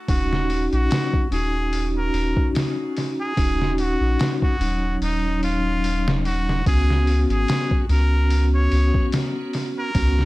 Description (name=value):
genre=trip hop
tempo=73 BPM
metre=4/4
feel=swing 55% on 16ths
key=Eb minor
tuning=A4 = 442 Hz
part: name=trumpet with straight mute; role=melody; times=0.1-10.3 s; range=Eb4 to Db5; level=-28 LUFS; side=equal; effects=tape echo
part: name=tonewheel organ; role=accompaniment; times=0.1-10.3 s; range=Gb3 to Gb4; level=-25 LUFS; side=equal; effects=chorus vibrato, slow rotary speaker, harmonic tremolo, low-pass filter
part: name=soft dub sub bass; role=bass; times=0.1-10.3 s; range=Eb1 to Db2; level=-21 LUFS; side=equal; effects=none
part: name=trip hop sampler-style drum kit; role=drums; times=0.1-10.3 s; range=hi-hat, kick drum, snare drum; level=-24 LUFS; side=equal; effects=overdrive
room=little or no reverb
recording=dark, warm production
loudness=-19 LUFS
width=side -19 dB against mid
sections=0.1-10.3 A section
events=filter sweep on tonewheel organ 0.1-10.3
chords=0.1 Ebm7; 6.7 Db7sus4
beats=| 0.09 0.91 1.73 2.55 | 3.37 4.20 5.02 5.84 | 6.66 7.48 8.31 9.13 | 9.95